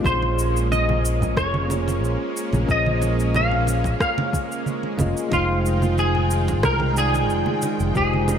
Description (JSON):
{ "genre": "sunset chillout", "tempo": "91 BPM", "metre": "4/4", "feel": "straight", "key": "Bb minor", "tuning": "A4 = 440 Hz", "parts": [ { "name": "bell-like tine electric piano", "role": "accompaniment", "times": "0.0-8.4 s", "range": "Ab3 to G5", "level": "-27 LUFS", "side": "moving between left 3 dB and right 6 dB", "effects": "auto-pan, digital delay" }, { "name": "lush unison pad", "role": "sustained chords", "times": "0.0-8.4 s", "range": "Eb3 to G5", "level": "-29 LUFS", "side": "right 1 dB", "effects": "chorus" }, { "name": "fingered electric bass", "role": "bass", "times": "0.0-8.4 s", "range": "F1 to C2", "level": "-22 LUFS", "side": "equal", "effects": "tube saturation" }, { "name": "electronic kick drum", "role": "drums", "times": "0.0-8.1 s", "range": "none", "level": "-26 LUFS", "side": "equal", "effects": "overdrive, studio reverb" }, { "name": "semi-hollow electric guitar", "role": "melody", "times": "0.1-8.4 s", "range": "F4 to F5", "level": "-24 LUFS", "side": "left 1 dB", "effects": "ensemble chorus, digital delay" }, { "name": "electronic congas, shaker and rim click", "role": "drums", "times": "0.1-8.4 s", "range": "none", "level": "-28 LUFS", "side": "right 2 dB", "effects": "overdrive, studio reverb" }, { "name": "congas", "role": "percussion", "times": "0.2-8.4 s", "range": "none", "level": "-31 LUFS", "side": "right 4 dB", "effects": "none" } ], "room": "moderate plate reverb, RT60 2.3 s", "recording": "bright 1980s-style digital production", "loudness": "-19 LUFS", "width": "side -8 dB against mid", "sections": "0.0-8.4 A section", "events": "none", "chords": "0.0 Bbm9; 5.3 Fm9" }